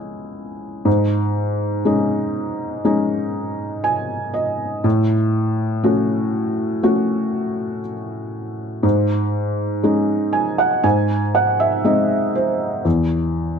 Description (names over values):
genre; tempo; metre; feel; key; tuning
folk; 60 BPM; 4/4; straight; unclear; A4 = 440 Hz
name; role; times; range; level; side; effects
felt-muted upright piano; solo; 0.0-13.6 s; C#2 to G#5; -18 LUFS; equal; slapback echo
room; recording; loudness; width
little or no reverb; dry, close 1970s-style studio recording; -17 LUFS; side -6 dB against mid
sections
0.0-13.6 A section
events
none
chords
0.0 C#m; 0.9 G#sus4; 4.8 F#m/A; 8.8 G#sus4; 10.8 G#; 12.8 N.C.